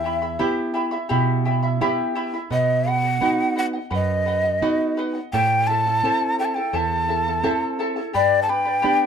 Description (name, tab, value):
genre	andean folk, Andean ensemble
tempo	85 BPM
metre	4/4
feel	straight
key	unclear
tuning	A4 = 444 Hz
part	breathy mellow large quena	melody	0.0-9.1 s	D5 to A5	-20 LUFS	equal	none
part	charango	accompaniment	0.0-9.1 s	E4 to B5	-26 LUFS	left 1 dB	none
part	nylon-string guitar	accompaniment	0.0-9.1 s	E2 to A4	-24 LUFS	right 3 dB	none
room	moderate small room reverb, RT60 0.5 s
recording	minimal, uncompressed stereo recording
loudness	-19 LUFS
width	side -7 dB against mid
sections	0.0-9.1 A section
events	none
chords	0.0 Em; 2.5 B; 5.3 Am; 8.1 G